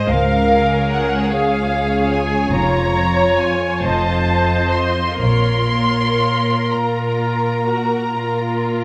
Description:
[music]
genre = classical, slow romantic movement for string orchestra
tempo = 40-50 BPM (dotted quarters)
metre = 12/8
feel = rubato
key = Bb minor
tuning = A4 = 442 Hz
[part]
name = muted symphonic violin section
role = melody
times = 0.0-8.8 s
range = F5 to C6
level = -23 LUFS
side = equal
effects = none
[part]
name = muted studio violin section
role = second line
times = 0.0-8.8 s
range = F4 to Eb5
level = -28 LUFS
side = equal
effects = none
[part]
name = muted symphonic viola section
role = accompaniment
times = 0.0-8.8 s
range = Ab4 to Db5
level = -23 LUFS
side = equal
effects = none
[part]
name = muted symphonic cello section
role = bass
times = 0.1-8.8 s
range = Db2 to Bb2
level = -22 LUFS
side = equal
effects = none
[part]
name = muted symphonic double bass section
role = bass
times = 0.1-6.2 s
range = F1 to Db2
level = -25 LUFS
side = equal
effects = none
[sound]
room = moderate recital hall reverb, RT60 1.5 s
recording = none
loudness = -17 LUFS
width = mono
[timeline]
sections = 0.0-8.8 A section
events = none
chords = 0.1 Db; 2.5 Bbm/F; 3.8 F7; 5.2 Bbm

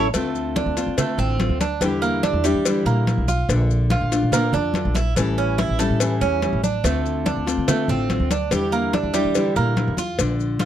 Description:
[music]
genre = latin, Cuban son and guajira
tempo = 143 BPM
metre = 4/4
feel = straight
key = D minor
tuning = A4 = 440 Hz
[part]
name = nylon-string guitar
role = accompaniment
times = 0.0-10.7 s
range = D3 to F4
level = -24 LUFS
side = left 4 dB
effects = none
[part]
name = Cuban tres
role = arpeggios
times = 0.0-10.7 s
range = G3 to A4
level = -24 LUFS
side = right 7 dB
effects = none
[part]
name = upright bass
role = bass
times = 0.0-10.7 s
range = A1 to E3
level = -23 LUFS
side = equal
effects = none
[part]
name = congas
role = percussion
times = 0.1-10.7 s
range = none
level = -26 LUFS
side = left 2 dB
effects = none
[part]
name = cowbell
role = percussion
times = 0.1-10.7 s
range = none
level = -29 LUFS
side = left 3 dB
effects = none
[part]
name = maracas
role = percussion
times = 0.1-10.7 s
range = none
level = -33 LUFS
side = left 22 dB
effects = none
[sound]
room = light reverb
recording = dry, close 1970s-style studio recording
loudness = -18 LUFS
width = side -10 dB against mid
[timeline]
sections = 0.1-10.7 A section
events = none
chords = 0.1 Dm7; 1.8 Em7b5; 3.5 Bbmaj7; 5.2 A7; 6.8 Dm7; 8.5 Em7b5

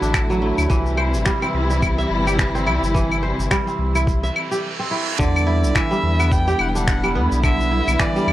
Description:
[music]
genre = organic downtempo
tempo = 107 BPM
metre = 4/4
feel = swing 58% on 16ths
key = E minor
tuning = A4 = 440 Hz
[part]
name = dark studio string section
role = sustained chords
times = 0.0-8.3 s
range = C3 to E4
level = -24 LUFS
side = left 1 dB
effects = sidechain pumping
[part]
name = kora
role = arpeggios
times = 0.0-8.3 s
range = D3 to E5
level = -23 LUFS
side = right 2 dB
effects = tape echo
[part]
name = warm sub bass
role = bass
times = 0.0-8.3 s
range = E1 to E2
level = -21 LUFS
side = equal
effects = sidechain pumping
[part]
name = electronic cabasa, finger snaps and claves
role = drums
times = 0.0-8.3 s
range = none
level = -24 LUFS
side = left 2 dB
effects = none
[part]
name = electronic kick drum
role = drums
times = 0.1-8.1 s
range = none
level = -21 LUFS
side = equal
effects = none
[part]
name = reverse cymbal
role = sound effects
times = 4.3-5.2 s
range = none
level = -27 LUFS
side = right 5 dB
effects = none
[part]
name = clear kamancheh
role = melody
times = 5.2-8.3 s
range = D5 to G5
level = -27 LUFS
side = equal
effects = tape echo
[sound]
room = digital ambience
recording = dry, gritty hardware recording, cassette tape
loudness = -17 LUFS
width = side -14 dB against mid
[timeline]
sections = 0.0-5.2 A section; 5.2-8.3 B section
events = reverse cymbal 4.3-5.2; break 4.6-5.2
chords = 0.0 Dadd9; 0.7 C; 5.2 Em7

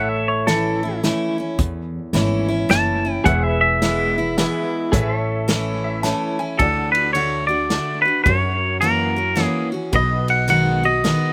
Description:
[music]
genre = honky-tonk and classic country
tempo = 108 BPM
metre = 3/4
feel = swing 63% on 8ths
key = A major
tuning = A4 = 441 Hz
[part]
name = twangy electric guitar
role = melody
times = 0.0-11.3 s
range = A4 to A5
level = -22 LUFS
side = equal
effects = none
[part]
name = honky-tonk upright piano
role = accompaniment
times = 0.0-11.3 s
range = F#4 to A5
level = -33 LUFS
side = equal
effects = slapback echo
[part]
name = picked steel-string acoustic guitar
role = accompaniment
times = 0.0-11.3 s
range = E2 to F#4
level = -25 LUFS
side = equal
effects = slapback echo
[part]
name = pedal steel guitar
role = sustained chords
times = 0.0-6.6 s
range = G#4 to E5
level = -30 LUFS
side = equal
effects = subtle chorus
[part]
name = upright bass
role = bass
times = 0.0-11.1 s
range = E1 to F#2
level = -27 LUFS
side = equal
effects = none
[part]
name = unplugged drum kit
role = drums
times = 0.5-11.2 s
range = hi-hat, kick drum, ride cymbal, snare drum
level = -25 LUFS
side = equal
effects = none
[sound]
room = little or no reverb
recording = recorded outdoors, with no room sound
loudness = -19 LUFS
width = mono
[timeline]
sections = 0.0-6.6 A section; 6.6-11.3 B section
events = clean electric guitar solo 0.0-6.6; honky-tonk piano fill 5.5-6.6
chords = 0.0 A; 3.3 E; 4.9 A; 6.6 D; 8.3 F#7; 9.9 B6

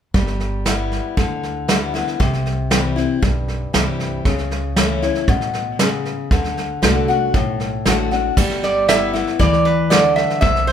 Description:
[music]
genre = honky-tonk and classic country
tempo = 117 BPM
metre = 4/4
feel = straight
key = G major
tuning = A4 = 441 Hz
[part]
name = picked steel-string acoustic guitar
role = accompaniment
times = 0.1-10.7 s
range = G2 to F#4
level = -20 LUFS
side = left 5 dB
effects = none
[part]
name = upright bass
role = bass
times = 0.1-10.7 s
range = G1 to A2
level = -25 LUFS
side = right 1 dB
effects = none
[part]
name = soft brush drum kit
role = drums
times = 0.1-10.7 s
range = crash cymbal, hi-hat, kick drum, snare drum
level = -19 LUFS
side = right 1 dB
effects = none
[part]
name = lap resonator guitar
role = melody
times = 8.6-10.7 s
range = B4 to E5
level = -16 LUFS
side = right 3 dB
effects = none
[sound]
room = light reverb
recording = minimal, uncompressed stereo recording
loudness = -16 LUFS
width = side -8 dB against mid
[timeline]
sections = 0.1-8.4 A section; 8.4-10.7 B section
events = none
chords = 0.1 G6; 2.2 C; 4.3 A/C#; 6.3 D; 8.4 G6

